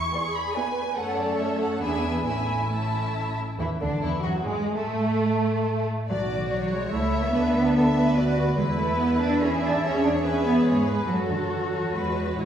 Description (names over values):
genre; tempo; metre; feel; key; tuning
quick classical-period movement for string orchestra; 143 BPM; 3/4; rubato; A major; A4 = 440 Hz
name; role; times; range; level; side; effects
rich chamber violin section; melody; 0.0-12.5 s; G#3 to C#6; -31 LUFS; left 1 dB; none
rich chamber double bass section; bass; 0.0-12.5 s; A1 to A2; -30 LUFS; equal; none
warm chamber cello section; bass; 0.0-12.5 s; D3 to B4; -26 LUFS; right 1 dB; none
clear chamber violin section; second line; 0.1-12.5 s; G#3 to E5; -30 LUFS; equal; none
rich chamber viola section; accompaniment; 0.1-12.5 s; D3 to G#4; -30 LUFS; right 1 dB; none
room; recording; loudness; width
wet scoring stage reverb, RT60 1.6 s; heard from further back in the room; -22 LUFS; side -9 dB against mid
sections
0.0-3.6 A section; 3.6-12.5 B section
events
none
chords
0.0 E7; 1.0 F#m; 1.8 E7; 2.3 A; 3.6 A5; 4.9 N.C.; 6.1 Bm; 7.3 Bm/D; 8.6 E; 11.1 F#m; 11.9 E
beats
0.13 0.54 | 0.96 1.39 1.82 | 2.26 2.71 3.15 | 3.59 4.02 4.44 | 4.86 5.27 5.68 | 6.09 6.51 6.92 | 7.34 7.75 8.16 | 8.58 9.00 9.41 | 9.83 10.25 10.67 | 11.09 11.51 11.94 | 12.39